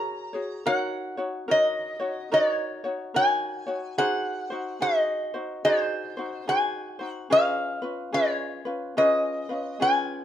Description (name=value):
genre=Hawaiian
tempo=72 BPM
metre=4/4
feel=swing 63% on 8ths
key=unclear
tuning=A4 = 440 Hz
part: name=lap resonator guitar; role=melody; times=0.0-10.2 s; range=B#4 to A#5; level=-24 LUFS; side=equal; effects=plate reverb
part: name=ukulele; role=accompaniment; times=0.0-10.2 s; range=C#4 to C#5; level=-30 LUFS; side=left 1 dB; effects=none
room=light reverb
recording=close, detailed microphones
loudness=-24 LUFS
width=side -10 dB against mid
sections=0.0-10.2 A section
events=none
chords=0.0 F#add9; 0.7 D#m7; 4.0 G#7; 7.3 C#7